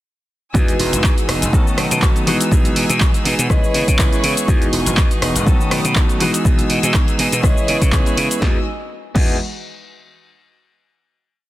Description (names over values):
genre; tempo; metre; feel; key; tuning
filtered disco house; 122 BPM; 4/4; swing 55% on 16ths; E major; A4 = 440 Hz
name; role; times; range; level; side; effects
dark concert grand piano; accompaniment; 0.5-9.3 s; D#3 to D#5; -22 LUFS; left 1 dB; phaser, sidechain pumping
clear studio string section; sustained chords; 0.5-8.6 s; D#4 to E6; -27 LUFS; left 2 dB; sidechain pumping
clean electric guitar; riff; 0.5-9.4 s; F#3 to A4; -25 LUFS; right 3 dB; sidechain pumping
gritty slap bass; bass; 0.5-9.4 s; E1 to C#3; -21 LUFS; equal; overdrive, sidechain pumping
electronic kick drum; drums; 0.5-9.3 s; none; -16 LUFS; equal; none
punchy analog drum machine; drums; 0.6-9.3 s; cabasa, crash cymbal, handclaps, hi-hat, rim click, snare drum; -22 LUFS; equal; sidechain pumping on perc, sidechain pumping on hats, sidechain pumping on cymbals
room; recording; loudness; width
digital ambience; dense, heavily limited modern master; -14 LUFS; side -15 dB against mid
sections
0.5-8.4 drop; 8.4-10.4 final chord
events
drop 0.5-8.4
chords
0.5 Emaj7; 1.5 B7; 2.3 Emaj7/B; 3.5 C#m7; 4.5 Emaj7; 5.5 B7; 6.2 Emaj7/B; 7.4 C#m7; 8.4 Emaj7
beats
| 0.55 1.04 1.53 2.02 | 2.52 3.01 3.50 3.99 | 4.48 4.97 5.47 5.96 | 6.45 6.94 7.43 7.92 | 8.42 8.91